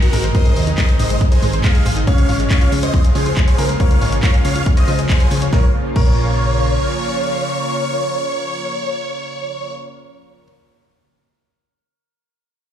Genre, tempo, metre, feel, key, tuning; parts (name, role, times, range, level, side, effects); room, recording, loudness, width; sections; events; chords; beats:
uplifting trance; 139 BPM; 4/4; straight; Bb minor; A4 = 443 Hz
big supersaw lead; melody; 0.0-9.7 s; Gb4 to F5; -22 LUFS; right 1 dB; phaser, sidechain pumping, tape echo
lush unison pad; sustained chords; 0.0-9.7 s; C3 to F4; -24 LUFS; equal; chorus, sidechain pumping
analog pluck; arpeggios; 0.0-6.1 s; Ab3 to Db5; -29 LUFS; left 4 dB; chorus, sidechain pumping, dub echo
punchy analog drum machine; drums; 0.0-6.1 s; crash cymbal, handclaps, hi-hat, snare drum; -26 LUFS; left 1 dB
clear grand piano; second line; 0.1-10.4 s; Bb3 to Db5; -28 LUFS; left 2 dB; ping-pong delay
solid FM bass; bass; 0.1-6.8 s; Ab1 to Eb2; -19 LUFS; equal; sidechain pumping
electronic kick drum; drums; 0.3-6.1 s; -14 LUFS; equal
little or no reverb; played on a big sound system in a bare room, large studio reverb; -14 LUFS; side -10 dB against mid
0.0-5.5 A section; 5.5-9.0 B section
drop 0.0-5.5
0.0 Ab; 2.1 Db; 5.5 Bbm
| 0.35 0.78 1.21 1.64 | 2.07 2.50 2.94 3.37 | 3.80 4.23 4.66 5.09 | 5.53 5.96 6.39 6.82 | 7.25 7.68 8.12 8.55